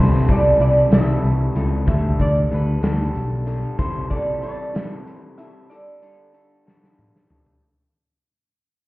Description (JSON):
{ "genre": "indie rock", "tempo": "63 BPM (dotted quarters)", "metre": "6/8", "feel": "straight", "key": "unclear", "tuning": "A4 = 440 Hz", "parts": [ { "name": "lap resonator guitar", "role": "melody", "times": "0.0-6.9 s", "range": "A4 to E5", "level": "-22 LUFS", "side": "right 1 dB", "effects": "slapback echo" }, { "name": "electric guitar through a small old amp", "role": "riff", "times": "0.0-7.6 s", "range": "C3 to A4", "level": "-27 LUFS", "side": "left 2 dB", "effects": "spring reverb" }, { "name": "picked electric bass", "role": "bass", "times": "0.0-3.6 s", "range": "B1 to D2", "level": "-19 LUFS", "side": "equal", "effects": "none" }, { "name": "big rock drum kit", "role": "drums", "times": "0.3-7.6 s", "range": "hi-hat, kick drum, snare drum, toms", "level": "-21 LUFS", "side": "equal", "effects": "none" } ], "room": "light reverb", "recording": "heard muffled through a wall, stone room reverb, EQ", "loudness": "-17 LUFS", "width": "side -19 dB against mid", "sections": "0.0-7.6 A section", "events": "fade-out 0.0-7.6; drum fill 6.7-7.6", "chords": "0.0 C6; 1.9 Dsus4; 3.8 C6; 5.7 Dsus4" }